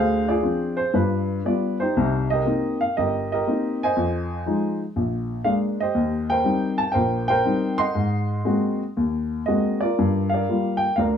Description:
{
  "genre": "solo jazz",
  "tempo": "120 BPM",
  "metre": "4/4",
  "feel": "swing 69% on 8ths, rubato",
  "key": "unclear",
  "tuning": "A4 = 439 Hz",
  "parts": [
    { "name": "warm baby grand piano", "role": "solo", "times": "0.0-11.2 s", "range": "G1 to C6", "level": "-20 LUFS", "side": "equal", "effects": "none" }
  ],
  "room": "moderate small room ambience, RT60 0.5 s",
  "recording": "small room ambience",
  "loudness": "-20 LUFS",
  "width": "side -8 dB against mid",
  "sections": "0.0-2.0 A section; 2.0-11.2 B section",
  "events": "none",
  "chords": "0.0 Dm7b5; 0.9 G7; 2.0 Cm7; 4.0 Fm7; 5.0 Bb7; 6.0 Eb6; 8.0 Ab9; 10.0 Gm7"
}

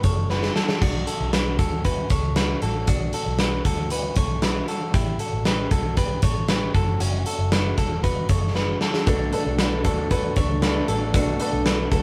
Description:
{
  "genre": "jangly indie pop",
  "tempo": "116 BPM",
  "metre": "4/4",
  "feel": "straight",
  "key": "B minor",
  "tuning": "A4 = 440 Hz",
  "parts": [
    { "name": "direct-recorded clean electric guitar", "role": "arpeggios", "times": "0.0-12.0 s", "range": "C#4 to C#5", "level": "-30 LUFS", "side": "equal", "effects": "none" },
    { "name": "vintage muted picked electric bass", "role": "bass", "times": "0.0-12.0 s", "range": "E1 to D2", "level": "-29 LUFS", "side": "equal", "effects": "none" },
    { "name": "big rock drum kit", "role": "drums", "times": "0.0-12.0 s", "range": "hi-hat, kick drum, snare drum, splash cymbal", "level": "-25 LUFS", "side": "equal", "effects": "none" },
    { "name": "dark upright piano", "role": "accompaniment", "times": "9.1-12.0 s", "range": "D4 to B4", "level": "-31 LUFS", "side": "equal", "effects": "none" },
    { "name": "fingerpicked steel-string acoustic guitar", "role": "accompaniment", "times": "9.1-12.0 s", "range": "B2 to A4", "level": "-30 LUFS", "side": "equal", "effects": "none" }
  ],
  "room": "light reverb",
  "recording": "band playing live in one room",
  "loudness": "-23 LUFS",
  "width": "mono",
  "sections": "0.0-12.0 A section",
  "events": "drum fill 0.3-0.8, 8.6-9.1",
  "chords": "0.0 F#sus4; 0.8 Bm7; 4.9 A5; 6.8 F#sus4; 9.1 Bm7"
}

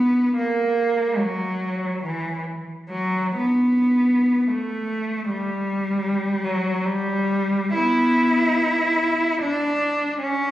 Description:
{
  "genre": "classical, free, expressive piece for unaccompanied cello",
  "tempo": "73 BPM",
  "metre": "3/4",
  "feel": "uneven beats, rubato",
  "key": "B minor",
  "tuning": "A4 = 441 Hz",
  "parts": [
    { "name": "rich cello", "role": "solo", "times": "0.0-10.5 s", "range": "E3 to E4", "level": "-19 LUFS", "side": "equal", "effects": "none" }
  ],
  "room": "wet recital hall reverb, RT60 1.7 s",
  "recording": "recorded on a phone in the room, club reverb, compression",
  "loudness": "-19 LUFS",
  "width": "side -14 dB against mid",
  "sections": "0.0-10.5 A section",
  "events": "none",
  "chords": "none"
}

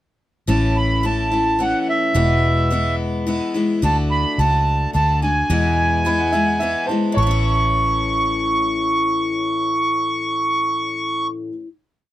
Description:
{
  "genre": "honky-tonk and classic country",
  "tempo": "108 BPM",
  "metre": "3/4",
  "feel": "straight",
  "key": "A major",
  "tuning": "A4 = 441 Hz",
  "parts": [
    { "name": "accordion", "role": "melody", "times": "0.5-11.3 s", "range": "E5 to C#6", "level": "-19 LUFS", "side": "right 2 dB", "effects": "none" },
    { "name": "picked steel-string acoustic guitar", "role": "accompaniment", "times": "0.5-11.7 s", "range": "E2 to F#4", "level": "-22 LUFS", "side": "left 3 dB", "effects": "none" },
    { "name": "vintage muted fingered electric bass", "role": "bass", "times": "0.5-11.5 s", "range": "E1 to E2", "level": "-21 LUFS", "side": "equal", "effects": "none" },
    { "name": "bright upright piano", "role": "second line", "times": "6.1-11.5 s", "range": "C5 to B5", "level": "-28 LUFS", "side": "right 3 dB", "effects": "none" }
  ],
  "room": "light reverb",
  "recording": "none",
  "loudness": "-17 LUFS",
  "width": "side -13 dB against mid",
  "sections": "0.5-7.2 verse; 7.2-10.5 final chord",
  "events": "none",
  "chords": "0.5 A; 2.2 E; 3.8 D; 5.5 E; 7.2 A"
}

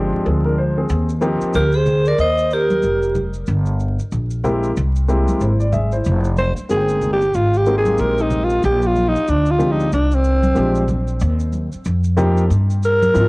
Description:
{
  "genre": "hip hop, jazz-hop",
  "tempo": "93 BPM",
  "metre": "4/4",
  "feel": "swing 60% on 16ths",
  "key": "F dorian",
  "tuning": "A4 = 443 Hz",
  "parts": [
    { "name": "dark baby grand piano", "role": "accompaniment", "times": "0.0-13.3 s", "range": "F3 to G5", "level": "-20 LUFS", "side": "left 1 dB", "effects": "cassette tape" },
    { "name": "upright bass", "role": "bass", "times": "0.0-13.3 s", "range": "F1 to Ab2", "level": "-18 LUFS", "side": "equal", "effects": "transformer saturation" },
    { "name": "maracas and congas", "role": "percussion", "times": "0.9-13.3 s", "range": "none", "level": "-28 LUFS", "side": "equal", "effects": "none" },
    { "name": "growling alto saxophone", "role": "melody", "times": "1.6-13.3 s", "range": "C4 to Eb5", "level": "-18 LUFS", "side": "equal", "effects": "analog delay" },
    { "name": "vibraphone with hard mallets", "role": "second line", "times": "1.6-3.2 s", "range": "G4 to C5", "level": "-20 LUFS", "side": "right 1 dB", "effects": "cassette tape" }
  ],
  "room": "light reverb",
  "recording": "home recording on cassette, vinyl crackle",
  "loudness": "-15 LUFS",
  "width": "side -24 dB against mid",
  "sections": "0.0-6.1 A section; 6.1-13.3 B section",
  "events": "alto saxophone solo 6.1-13.3",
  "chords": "0.0 Bb13; 0.9 Eb69; 3.5 Gmadd11; 4.8 C7b13; 6.1 Fm11; 8.6 Bb13; 11.2 Eb69"
}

